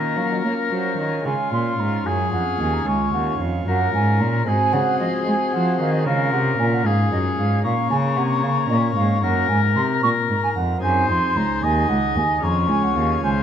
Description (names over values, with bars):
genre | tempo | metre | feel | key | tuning
classical, baroque-style sonata movement with continuo | 75 BPM (dotted quarters) | 12/8 | straight | Db major from 7.6 s | A4 = 440 Hz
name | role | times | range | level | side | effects
warm oboe | melody | 0.0-13.4 s | F4 to Eb5 | -24 LUFS | left 7 dB | none
baroque flute | second line | 0.0-13.3 s | C5 to Db6 | -25 LUFS | right 5 dB | none
pipe organ, principal chorus | accompaniment | 0.0-13.4 s | Db2 to Bb4 | -25 LUFS | equal | none
warm cello | bass | 0.0-13.4 s | Db2 to Bb3 | -22 LUFS | right 1 dB | none
room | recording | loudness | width
wet recital hall reverb, RT60 1.4 s | none | -18 LUFS | side -9 dB against mid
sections
0.0-13.4 A section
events
none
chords
0.0 Bbm; 1.3 Db; 4.5 Ab7; 6.1 Db; 7.6 Bbm; 9.2 Gb; 10.8 Ab7; 12.4 Db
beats
0.44 | 1.26 2.06 2.87 3.67 | 4.47 5.27 6.07 6.85 | 7.65 8.44 9.23 10.03 | 10.82 11.63 12.43 13.23